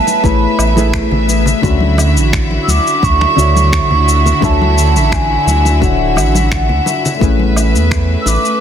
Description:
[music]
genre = sunset chillout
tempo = 86 BPM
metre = 4/4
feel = straight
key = unclear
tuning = A4 = 439 Hz
[part]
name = mellow hollow wooden flute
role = melody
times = 0.0-8.6 s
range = F#5 to E6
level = -17 LUFS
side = right 4 dB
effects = digital delay
[part]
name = dark grand piano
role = accompaniment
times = 0.0-8.6 s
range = D3 to E5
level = -18 LUFS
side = moving between left 9 dB and right 3 dB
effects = auto-pan, vintage 12-bit sampler grit, digital delay
[part]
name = warm chamber string section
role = sustained chords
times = 0.0-8.6 s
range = D3 to E5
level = -18 LUFS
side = left 1 dB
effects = none
[part]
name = electronic shaker, woodblock and finger snaps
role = drums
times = 0.1-8.6 s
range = none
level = -21 LUFS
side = left 1 dB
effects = overdrive, studio reverb, soft clipping on snare
[part]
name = congas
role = percussion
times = 0.1-8.4 s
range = none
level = -22 LUFS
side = left 3 dB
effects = none
[part]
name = warm sub bass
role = bass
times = 0.2-8.4 s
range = D1 to E2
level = -14 LUFS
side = equal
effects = none
[part]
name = electronic kick drum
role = drums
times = 0.2-8.1 s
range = none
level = -17 LUFS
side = equal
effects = studio reverb
[sound]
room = light reverb, studio reverb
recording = dense, heavily limited modern master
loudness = -10 LUFS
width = side -9 dB against mid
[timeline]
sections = 0.0-8.6 A section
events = none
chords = 0.0 Amaj9; 1.6 Dmaj9; 7.2 Amaj9

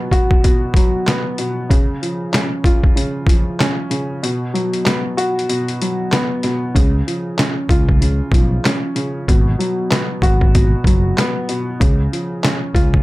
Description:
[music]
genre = hip hop, boom-bap hip-hop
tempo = 95 BPM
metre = 4/4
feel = swing 62% on 16ths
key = unclear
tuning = A4 = 439 Hz
[part]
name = dark upright piano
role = accompaniment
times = 0.0-13.0 s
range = B2 to F#4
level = -20 LUFS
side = equal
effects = high-pass filter, low-pass filter
[part]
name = trip hop sampler-style drum kit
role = drums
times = 0.1-13.0 s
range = handclaps, hi-hat, kick drum, snare drum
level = -16 LUFS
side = equal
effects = none
[part]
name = fingered electric bass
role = bass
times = 6.8-13.0 s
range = F#1 to C#2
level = -17 LUFS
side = equal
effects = none
[sound]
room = light reverb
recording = none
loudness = -14 LUFS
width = side -18 dB against mid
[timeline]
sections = 0.0-13.0 A section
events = break 4.2-6.8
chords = 0.0 B5; 1.7 C#; 4.2 B5; 6.8 C#; 9.3 G#m7; 11.8 C#

